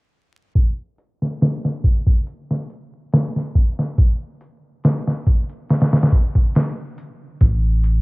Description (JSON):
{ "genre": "trip hop", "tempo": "70 BPM", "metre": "4/4", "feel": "straight", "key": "unclear", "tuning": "A4 = 440 Hz", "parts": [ { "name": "trip hop sampler-style drum kit", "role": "drums", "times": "0.6-8.0 s", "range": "hi-hat, kick drum, snare drum", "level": "-16 LUFS", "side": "equal", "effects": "none" }, { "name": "round analog bass", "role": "bass", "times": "7.4-8.0 s", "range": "A1", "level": "-16 LUFS", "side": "equal", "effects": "none" } ], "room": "little or no reverb", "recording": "rough home demo mix, vinyl crackle, low-pass filter", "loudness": "-17 LUFS", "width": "side -27 dB against mid", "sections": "0.6-8.0 A section", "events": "filter sweep 0.6-8.0", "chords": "none" }